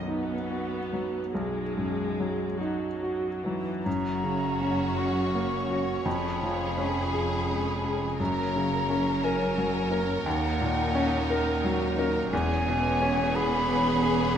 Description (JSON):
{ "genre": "classical, romantic movement for piano and orchestra", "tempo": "46-60 BPM (dotted quarters)", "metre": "12/8", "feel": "rubato", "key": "B major, F# major from 3.9 s", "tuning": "A4 = 440 Hz", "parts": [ { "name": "clear baby grand piano", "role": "melody", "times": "0.0-14.4 s", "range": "B1 to B5", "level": "-28 LUFS", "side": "equal", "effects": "none" }, { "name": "rich studio viola section", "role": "accompaniment", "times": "0.1-14.4 s", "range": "E3 to D#4", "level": "-36 LUFS", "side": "right 1 dB", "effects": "none" }, { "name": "mellow hollow silver concert flute", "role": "second line", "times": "3.8-14.4 s", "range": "F#5 to C#6", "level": "-31 LUFS", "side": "equal", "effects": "none" }, { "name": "rich studio violin section", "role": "melody", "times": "3.9-14.4 s", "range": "C#5", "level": "-40 LUFS", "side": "left 3 dB", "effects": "none" }, { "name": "rich studio violin section", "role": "second line", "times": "3.9-14.4 s", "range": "F#4 to A#4", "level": "-35 LUFS", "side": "left 2 dB", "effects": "none" }, { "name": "clear studio cello section", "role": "bass", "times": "3.9-14.4 s", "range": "D#2 to F#2", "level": "-35 LUFS", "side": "right 4 dB", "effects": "none" }, { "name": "rich studio double bass section", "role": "bass", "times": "3.9-14.4 s", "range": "E1 to D#2", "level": "-35 LUFS", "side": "right 3 dB", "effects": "none" }, { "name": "mellow French horn section", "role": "sustained chords", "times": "4.6-14.4 s", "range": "F#3 to C#4", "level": "-36 LUFS", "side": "left 3 dB", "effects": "none" } ], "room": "moderate scoring stage reverb, RT60 1.5 s", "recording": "none", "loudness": "-25 LUFS", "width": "side -9 dB against mid", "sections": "0.0-3.9 A section; 3.9-14.4 B section", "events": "none", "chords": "0.0 B; 3.9 F#; 6.1 C#7/E#; 8.2 F#; 10.3 D#m7; 12.3 C#m7/E", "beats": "0.09 1.36 2.60 | 3.86 4.98 6.06 7.12 | 8.20 9.24 10.26 11.30 | 12.32 13.35 14.36" }